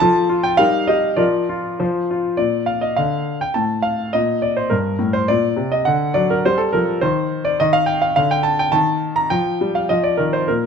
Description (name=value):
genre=classical-period piano sonatina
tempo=103 BPM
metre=2/4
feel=straight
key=Bb major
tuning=A4 = 440 Hz
part: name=clear grand piano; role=solo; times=0.0-10.7 s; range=G2 to Bb5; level=-16 LUFS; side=equal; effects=none
room=light reverb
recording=close, detailed microphones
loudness=-16 LUFS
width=side -6 dB against mid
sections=0.0-2.4 A section; 2.4-10.7 B section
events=none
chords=0.0 F; 0.6 Eb/G; 1.2 Bb/F; 1.8 F5; 2.4 Bb; 3.6 N.C.; 4.7 Gm; 5.9 D; 6.5 Gm; 7.0 N.C.; 9.3 Fsus2; 9.9 Cm11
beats=| 0.02 0.60 | 1.20 1.80 | 2.40 2.98 | 3.56 4.14 | 4.72 5.30 | 5.88 6.45 | 7.03 7.60 | 8.17 8.74 | 9.32 9.90 | 10.50